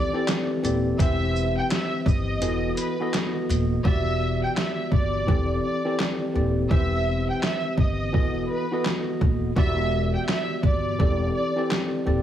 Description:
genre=hip hop, boom-bap hip-hop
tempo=84 BPM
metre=4/4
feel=swing 62% on 16ths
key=E minor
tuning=A4 = 438 Hz
part: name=warm studio violin section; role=melody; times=0.0-11.7 s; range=B4 to G5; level=-29 LUFS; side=right 1 dB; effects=high-pass filter, low-pass filter, slapback echo
part: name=tine electric piano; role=accompaniment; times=0.0-12.2 s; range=E3 to D#5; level=-27 LUFS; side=equal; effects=overdrive, fast stereo tremolo, cassette tape, high-pass filter, low-pass filter
part: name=trip hop sampler-style drum kit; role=drums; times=0.3-11.9 s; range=handclaps, hi-hat, kick drum, shaker, snare drum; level=-25 LUFS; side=equal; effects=overdrive
part: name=upright bass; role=bass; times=0.6-12.2 s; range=D#1 to G1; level=-25 LUFS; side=equal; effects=none
room=light reverb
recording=heavily compressed radio sound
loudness=-22 LUFS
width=side -10 dB against mid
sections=0.0-3.9 A section; 3.9-12.2 B section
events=kick muted 2.4-3.9; hi-hats muted 3.9-12.2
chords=0.0 D7sus4/E; 1.0 Cmaj7/E; 2.4 B7/E; 3.9 Em7; 5.3 D7sus4/E; 6.7 Cmaj7/E; 8.1 B7/E; 9.6 Em7; 11.0 D7sus4/E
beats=0.28 | 0.99 1.71 2.42 3.14 | 3.85 4.56 5.28 5.99 | 6.71 7.42 8.14 8.85 | 9.56 10.28 10.99 11.71

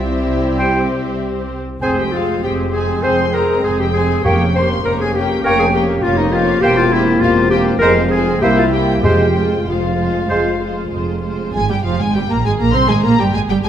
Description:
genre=quick classical-period movement for symphony orchestra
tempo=99 BPM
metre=4/4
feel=straight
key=F minor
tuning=A4 = 440 Hz
part: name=muted studio violin section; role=melody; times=0.0-13.7 s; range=C5 to C6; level=-26 LUFS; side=left 4 dB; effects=none
part: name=muted studio violin section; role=second line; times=0.0-13.7 s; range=F4 to C6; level=-25 LUFS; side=left 2 dB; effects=none
part: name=warm clarinet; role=second line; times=0.0-10.9 s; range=Eb4 to C5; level=-18 LUFS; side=left 2 dB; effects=none
part: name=muted studio viola section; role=accompaniment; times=0.0-13.7 s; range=F3 to Ab4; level=-22 LUFS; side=right 1 dB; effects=none
part: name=mellow French horn section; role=sustained chords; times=0.0-11.2 s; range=G3 to F4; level=-22 LUFS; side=left 4 dB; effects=none
part: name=muted studio cello section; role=bass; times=0.0-13.7 s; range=C2 to C4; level=-22 LUFS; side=right 3 dB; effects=none
part: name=muted studio double bass section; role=bass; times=0.0-13.7 s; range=E1 to C2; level=-22 LUFS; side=right 3 dB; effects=none
part: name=silver concert flute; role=second line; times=0.6-10.6 s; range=E5 to Ab5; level=-23 LUFS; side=equal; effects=none
part: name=warm oboe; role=second line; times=0.6-10.5 s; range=C5 to Db5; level=-25 LUFS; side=right 1 dB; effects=none
part: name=mellow bassoon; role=accompaniment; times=0.6-10.5 s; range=Ab3 to C4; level=-24 LUFS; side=right 2 dB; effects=none
part: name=timpani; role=percussion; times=4.2-5.1, 9.0-9.9 s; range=F2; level=-22 LUFS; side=equal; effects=none
room=wet recital hall reverb, RT60 1.8 s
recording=none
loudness=-13 LUFS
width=side -10 dB against mid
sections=0.0-11.5 A section; 11.5-13.7 B section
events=none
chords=0.0 C; 1.8 Fm; 4.2 Gm7b5/F; 6.6 C7/E; 7.8 Fm; 8.4 C7; 9.0 Fm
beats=0.59 1.20 | 1.82 2.44 3.04 3.65 | 4.25 4.85 5.45 6.04 | 6.63 7.23 7.82 8.42 | 9.04 9.67 10.30 10.92 | 11.54 12.14 12.75 13.35

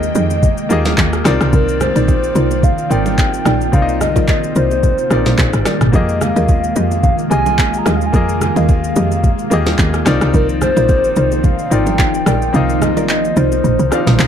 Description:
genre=amapiano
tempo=109 BPM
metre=4/4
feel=swing 55% on 16ths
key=F dorian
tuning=A4 = 439 Hz
part: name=hollow clarinet-like synth lead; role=melody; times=0.0-14.3 s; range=Bb4 to Bb5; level=-19 LUFS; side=left 1 dB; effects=chorus, digital delay
part: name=clear concert grand piano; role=accompaniment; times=0.0-14.3 s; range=Bb3 to F5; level=-22 LUFS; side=left 4 dB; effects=none
part: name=string machine, cellos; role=sustained chords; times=0.0-14.3 s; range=Eb3 to G5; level=-21 LUFS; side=equal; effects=ensemble chorus
part: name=mallet-like synth pluck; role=stabs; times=0.0-14.0 s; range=Eb4 to Eb5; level=-24 LUFS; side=equal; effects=chorus, phaser, digital delay
part: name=woody log drum bass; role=bass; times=0.0-14.3 s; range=Ab1 to F2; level=-17 LUFS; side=equal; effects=none
part: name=smooth R&B drum kit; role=drums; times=0.0-14.3 s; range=handclaps, kick drum, rim click, shaker, snare drum, toms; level=-16 LUFS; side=equal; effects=none
part: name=bongos and congas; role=percussion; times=0.3-14.3 s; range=none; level=-24 LUFS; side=right 5 dB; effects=none
room=light reverb, digital ambience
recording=dark, warm production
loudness=-12 LUFS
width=side -8 dB against mid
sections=0.0-14.3 A section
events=kick muted 12.5-14.3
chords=0.0 Fm11; 1.3 Cm11; 5.9 Fm11; 10.1 Cm11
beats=0.43 0.98 | 1.53 2.08 2.63 3.18 | 3.73 4.28 4.83 5.38 | 5.93 6.49 7.04 7.59 | 8.14 8.69 9.24 9.79 | 10.34 10.89 11.44 11.99 | 12.54 13.09 13.64 14.19

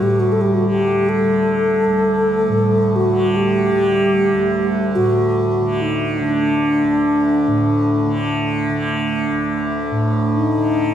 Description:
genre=world meditative, free-time meditation music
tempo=free time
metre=none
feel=none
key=D major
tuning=A4 = 440 Hz
part: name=breathy reedy bass flute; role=melody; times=0.0-10.9 s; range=D4 to A4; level=-17 LUFS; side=equal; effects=ping-pong delay
part: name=tanpura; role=drone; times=0.0-10.9 s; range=D2 to D3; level=-20 LUFS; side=equal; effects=none
part: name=glass harmonica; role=texture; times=0.0-10.9 s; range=G3 to D4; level=-22 LUFS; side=right 2 dB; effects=none
room=wet church reverb, RT60 3.2 s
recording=cassette tape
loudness=-15 LUFS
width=side -10 dB against mid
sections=0.0-10.9 A section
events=none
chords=none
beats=free time

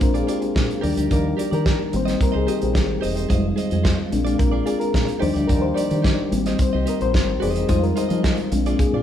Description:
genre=disco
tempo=109 BPM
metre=4/4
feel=straight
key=Eb major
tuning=A4 = 440 Hz
part: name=direct-recorded clean electric guitar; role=accompaniment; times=0.0-9.0 s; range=Eb4 to Eb5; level=-30 LUFS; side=right 4 dB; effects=none
part: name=mellow reed electric piano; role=accompaniment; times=0.0-9.0 s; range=F3 to D5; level=-22 LUFS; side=left 2 dB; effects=fast tremolo
part: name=tonewheel organ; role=sustained chords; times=0.0-9.0 s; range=D3 to G4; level=-32 LUFS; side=left 1 dB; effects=overdrive, slow rotary speaker
part: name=fingered electric bass with an envelope filter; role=bass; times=0.0-9.0 s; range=Fb1 to F3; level=-25 LUFS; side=equal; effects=none
part: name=warm soul drum kit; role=drums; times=0.0-8.9 s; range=hi-hat, kick drum, snare drum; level=-23 LUFS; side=equal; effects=none
room=moderate large studio reverb, RT60 1.2 s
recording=band playing live in one room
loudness=-18 LUFS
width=side -10 dB against mid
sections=0.0-9.0 A section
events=reed electric piano solo 0.0-9.0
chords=0.0 Bb7; 0.8 Ebmaj7; 1.9 Abmaj7; 3.3 Fm7; 4.1 Bb7; 5.2 Ebmaj7; 6.3 Abmaj7; 7.7 Fm7; 8.5 Bb7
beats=0.01 0.56 | 1.11 1.66 2.20 2.75 | 3.30 3.85 4.40 4.95 | 5.50 6.05 6.60 7.15 | 7.70 8.25 8.79

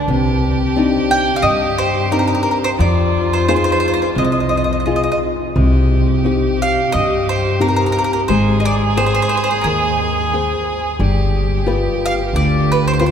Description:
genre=italian folk, Italian serenade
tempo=88 BPM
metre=4/4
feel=swing 54% on 8ths, rubato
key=C minor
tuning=A4 = 438 Hz
part: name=warm violin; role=second line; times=0.0-13.1 s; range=D4 to Ab4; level=-22 LUFS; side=right 1 dB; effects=none
part: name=nylon-string guitar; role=accompaniment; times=0.1-13.1 s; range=C3 to G5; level=-19 LUFS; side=left 2 dB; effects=none
part: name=upright bass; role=bass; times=0.1-13.1 s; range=G1 to G2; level=-18 LUFS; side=equal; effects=none
part: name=bowl-back mandolin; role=melody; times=1.1-13.1 s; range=Ab4 to G5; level=-19 LUFS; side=right 1 dB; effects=none
room=wet cathedral reverb, RT60 5.6 s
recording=recorded in a church or concert hall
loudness=-14 LUFS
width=side -8 dB against mid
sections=0.0-13.1 A section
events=none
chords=0.1 Cmadd9; 2.8 Fm7; 5.6 Cm; 8.3 Abmaj7; 11.0 G7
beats=| 0.08 0.75 1.43 2.11 | 2.79 3.48 4.17 4.87 | 5.57 6.26 6.95 7.63 | 8.31 8.98 9.66 10.34 | 11.01 11.68 12.34 13.01

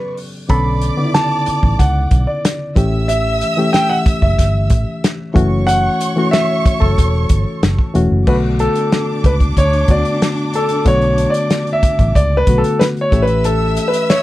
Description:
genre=lush 1970s-style soul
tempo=93 BPM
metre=4/4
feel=straight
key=B minor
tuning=A4 = 439 Hz
part: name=clear grand piano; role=melody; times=0.0-14.2 s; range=A4 to B5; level=-18 LUFS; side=equal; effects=none
part: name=warm studio violin section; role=second line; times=0.0-14.2 s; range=D4 to E6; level=-25 LUFS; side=right 1 dB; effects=none
part: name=reed electric piano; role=accompaniment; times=0.0-14.2 s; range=C#3 to A4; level=-19 LUFS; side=left 2 dB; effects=none
part: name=warm soul drum kit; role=drums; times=0.2-14.2 s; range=crash cymbal, hi-hat, kick drum, snare drum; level=-16 LUFS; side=equal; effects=none
part: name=vintage muted fingered electric bass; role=bass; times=0.5-13.8 s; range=E1 to D2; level=-16 LUFS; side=equal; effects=none
room=little or no reverb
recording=none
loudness=-12 LUFS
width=side -16 dB against mid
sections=0.0-8.3 A section; 8.3-14.2 B section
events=grand piano solo 8.3-14.2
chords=0.0 Gmaj9#11; 0.5 Bm9; 2.8 A7; 5.4 F#m7; 8.3 Bm7; 13.1 A7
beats=| 0.50 1.15 1.80 2.44 | 3.09 3.74 4.39 5.04 | 5.68 6.33 6.98 7.62 | 8.27 8.92 9.57 10.21 | 10.86 11.51 12.15 12.80 | 13.45 14.09

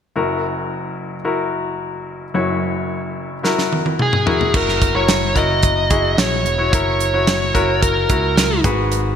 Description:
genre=piano-driven pop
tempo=110 BPM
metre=4/4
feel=straight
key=unclear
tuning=A4 = 436 Hz
part: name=clear baby grand piano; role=accompaniment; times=0.2-9.2 s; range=F#1 to C#5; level=-20 LUFS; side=left 2 dB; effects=none
part: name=modern studio drum kit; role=drums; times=3.4-9.0 s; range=crash cymbal, hi-hat, kick drum, snare drum, toms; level=-19 LUFS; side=right 1 dB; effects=none
part: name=bluesy overdriven lead guitar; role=melody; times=4.0-8.6 s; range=G#4 to D#5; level=-19 LUFS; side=right 1 dB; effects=distortion
part: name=modern bright picked electric bass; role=bass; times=4.5-9.2 s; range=E1 to C#2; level=-22 LUFS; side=right 1 dB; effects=none
room=moderate lush hall reverb, RT60 2.1 s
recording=bright 1980s-style digital production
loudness=-15 LUFS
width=side -8 dB against mid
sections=0.2-4.5 A section; 4.5-9.2 B section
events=drum fill 3.4-4.5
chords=0.2 F#7; 8.6 G#m7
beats=| 0.16 0.71 1.26 1.80 | 2.35 2.90 3.44 3.99 | 4.54 5.08 5.63 6.18 | 6.73 7.27 7.82 8.37 | 8.91

